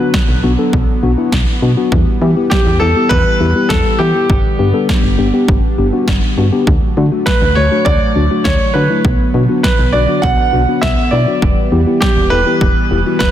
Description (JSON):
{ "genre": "synth-pop", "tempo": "101 BPM", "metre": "4/4", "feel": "straight", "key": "unclear", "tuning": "A4 = 439 Hz", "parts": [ { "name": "clear concert grand piano", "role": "melody", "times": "0.0-13.3 s", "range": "G4 to F#5", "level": "-16 LUFS", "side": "right 1 dB", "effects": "digital delay" }, { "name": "mellow tine electric piano", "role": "accompaniment", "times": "0.0-13.2 s", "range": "A3 to A4", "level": "-18 LUFS", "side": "left 4 dB", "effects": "none" }, { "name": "chorused pulse-width pad", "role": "sustained chords", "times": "0.0-13.3 s", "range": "D3 to B3", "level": "-20 LUFS", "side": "equal", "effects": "none" }, { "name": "punchy analog drum machine", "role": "drums", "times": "0.1-13.3 s", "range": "kick drum, snare drum", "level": "-15 LUFS", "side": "equal", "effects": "none" }, { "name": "solid FM bass", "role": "bass", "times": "0.3-13.3 s", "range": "E1 to E3", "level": "-15 LUFS", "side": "equal", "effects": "none" } ], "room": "light reverb", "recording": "dense, heavily limited modern master", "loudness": "-10 LUFS", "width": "side -11 dB against mid", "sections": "0.0-13.3 A section", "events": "none", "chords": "0.0 Bm; 1.9 Em; 4.3 G; 6.7 D; 9.0 Bm; 11.4 Em", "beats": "0.14 0.73 1.32 | 1.92 2.51 3.11 3.70 | 4.29 4.89 5.48 6.08 | 6.67 7.26 7.86 8.45 | 9.05 9.64 10.24 10.83 | 11.42 12.02 12.61 13.21" }